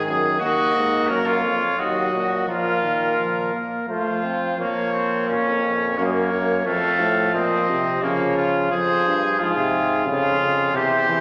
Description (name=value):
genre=classical, imitative canzona for brass ensemble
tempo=88 BPM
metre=3/4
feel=straight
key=Bb minor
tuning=A4 = 440 Hz
part: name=bright trumpet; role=second line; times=0.0-11.2 s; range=A3 to Bb4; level=-25 LUFS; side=equal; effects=none
part: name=warm trombone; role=accompaniment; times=0.0-11.2 s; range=C3 to C4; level=-28 LUFS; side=equal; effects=none
part: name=warm euphonium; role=bass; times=0.0-11.2 s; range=Eb2 to F3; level=-28 LUFS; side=equal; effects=none
part: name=clear trumpet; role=melody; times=0.4-11.2 s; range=Ab4 to F5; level=-28 LUFS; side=equal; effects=none
room=wet recital hall reverb, RT60 1.4 s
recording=none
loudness=-21 LUFS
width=mono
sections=0.0-4.6 A section; 4.6-11.2 B section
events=none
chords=0.4 Ebm; 2.5 Fsus4/Bb; 3.9 F; 4.6 Bbm/F; 6.0 Gb; 6.7 F; 8.0 Bbm/Db; 8.7 Fm; 10.1 Db/F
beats=| 0.41 1.10 1.79 | 2.49 3.19 3.89 | 4.59 5.28 5.97 | 6.66 7.34 8.03 | 8.71 9.39 10.06 | 10.74